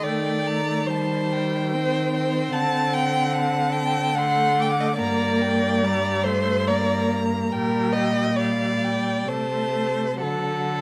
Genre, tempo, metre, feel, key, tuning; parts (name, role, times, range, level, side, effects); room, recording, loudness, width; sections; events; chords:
classical, slow romantic movement for string quartet; 61-76 BPM; 3/4; rubato; G minor; A4 = 438 Hz
rich violin; melody; 0.0-10.8 s; F5 to D6; -33 LUFS; equal
warm violin; second line; 0.0-10.8 s; A4 to A5; -27 LUFS; equal
rich viola; accompaniment; 0.0-10.8 s; F#3 to C4; -29 LUFS; equal
rich cello; bass; 0.0-10.8 s; G2 to Eb3; -28 LUFS; equal
moderate scoring stage reverb, RT60 1.6 s; close, detailed microphones; -23 LUFS; mono
0.0-10.8 A section
0.0 Cm/Eb; 2.5 D7; 5.0 Gm; 7.5 Gm/Bb; 9.3 Am/C; 10.2 D